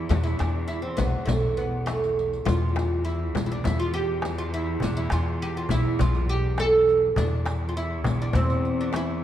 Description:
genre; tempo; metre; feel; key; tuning
Arabic maqam ensemble; 102 BPM; 4/4; straight; E maqam kurd; A4 = 440 Hz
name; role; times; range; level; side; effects
oud; melody; 0.0-9.2 s; A3 to A4; -26 LUFS; right 2 dB; none
upright bass; bass; 0.0-9.2 s; B1 to E2; -27 LUFS; equal; none
rich cello; drone; 0.0-9.2 s; E2; -34 LUFS; left 1 dB; none
darbuka; percussion; 0.1-9.2 s; none; -31 LUFS; right 1 dB; none
frame drum; percussion; 0.1-9.1 s; none; -33 LUFS; left 6 dB; none
riq; percussion; 0.1-9.1 s; none; -36 LUFS; left 1 dB; none
room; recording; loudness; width
moderate recital hall reverb, RT60 1.5 s; dark, warm production; -22 LUFS; side -11 dB against mid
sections
0.0-9.2 A section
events
none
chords
none

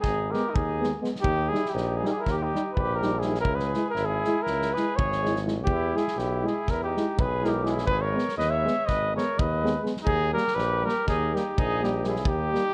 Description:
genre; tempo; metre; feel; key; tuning
balkan folk, Balkan brass band; 245 BPM (eighths); 9/8; straight; Eb phrygian dominant; A4 = 440 Hz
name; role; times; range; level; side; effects
mellow cornet; melody; 0.0-12.7 s; G4 to Fb5; -30 LUFS; equal; none
mellow trumpet; second line; 0.0-12.7 s; Eb4 to Db5; -36 LUFS; equal; none
clear tuba; bass; 0.0-12.5 s; Ab1 to E2; -33 LUFS; equal; none
loose indie drum kit; percussion; 0.0-12.6 s; kick drum, snare drum; -33 LUFS; equal; none
warm euphonium; accompaniment; 0.3-12.6 s; Bb3 to Fb4; -36 LUFS; equal; none
warm trombone; accompaniment; 0.3-12.6 s; G3 to Ab3; -37 LUFS; equal; none
room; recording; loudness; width
light reverb; worn, warbling old tape, cassette tape, warbly pitch drift; -26 LUFS; mono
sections
0.0-12.7 A section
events
none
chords
0.0 Abm; 1.2 Eb; 3.4 Dbm; 5.7 E; 7.9 Abm; 10.1 Eb

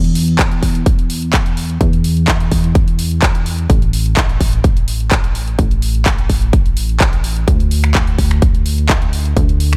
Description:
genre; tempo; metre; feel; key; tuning
progressive house; 127 BPM; 4/4; straight; unclear; A4 = 439 Hz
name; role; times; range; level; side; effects
plucky analog bass; bass; 0.0-9.8 s; A1 to E2; -18 LUFS; equal; sidechain pumping
house drum kit; drums; 0.0-9.8 s; finger snaps, handclaps, hi-hat; -23 LUFS; equal; overdrive, studio ambience
electronic kick drum; drums; 0.4-9.5 s; none; -16 LUFS; equal; studio ambience
room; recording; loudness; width
digital ambience; none; -15 LUFS; mono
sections
0.0-9.8 A section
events
none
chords
none

